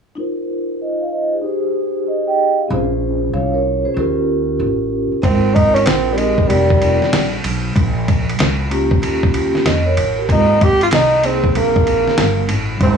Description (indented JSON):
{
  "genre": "hip hop, jazz-hop",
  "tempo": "95 BPM",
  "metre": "4/4",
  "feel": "swing 64% on 16ths",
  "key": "Ab major",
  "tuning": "A4 = 435 Hz",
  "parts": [
    { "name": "vibraphone with soft mallets", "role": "accompaniment", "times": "0.2-12.1 s", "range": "Bb3 to G5", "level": "-18 LUFS", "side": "right 1 dB", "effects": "low-pass filter" },
    { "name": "upright bass", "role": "bass", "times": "2.7-13.0 s", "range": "F1 to F2", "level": "-19 LUFS", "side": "right 1 dB", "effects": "none" },
    { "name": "breathy tenor saxophone", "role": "melody", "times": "5.2-13.0 s", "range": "G3 to G4", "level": "-15 LUFS", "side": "right 1 dB", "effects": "none" },
    { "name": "dusty soul sampler-style drum kit", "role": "drums", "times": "5.2-13.0 s", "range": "hi-hat, kick drum, ride cymbal, snare drum", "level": "-18 LUFS", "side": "equal", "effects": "none" }
  ],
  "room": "little or no reverb",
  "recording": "dry, gritty hardware recording, cassette tape, studio ambience",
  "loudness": "-14 LUFS",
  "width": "side -6 dB against mid",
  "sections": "0.2-5.2 A section; 5.2-13.0 B section",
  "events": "filter sweep on vibraphone 0.2-5.2",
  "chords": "0.2 Ab69/Eb (rootless); 1.4 Fm9/Eb (rootless); 2.7 Bbm9; 4.0 Eb7; 5.2 Ab69; 6.5 Fsus2; 7.8 Bbm; 9.0 Eb7; 10.3 Abadd9"
}